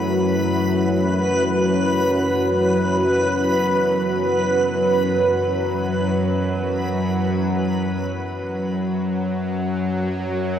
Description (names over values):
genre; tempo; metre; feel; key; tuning
dark ambient drone; free time; none; none; F# minor; A4 = 440 Hz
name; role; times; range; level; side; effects
deep dark ambient pad; sustained chords; 0.0-7.4 s; C#4 to B4; -23 LUFS; right 1 dB; chorus, built-in reverb
bowed-like drone; drone; 0.0-10.6 s; F#2 to F#3; -21 LUFS; left 1 dB; built-in reverb
backwards swelling texture; texture; 0.0-7.4 s; B4; -24 LUFS; left 1 dB; built-in reverb
room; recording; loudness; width
wet echo chamber reverb, RT60 2.3 s; none; -18 LUFS; side -9 dB against mid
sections
0.0-7.4 A section; 7.4-10.6 B section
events
filter sweep on synth drone 0.0-7.4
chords
0.0 F#5; 7.4 N.C.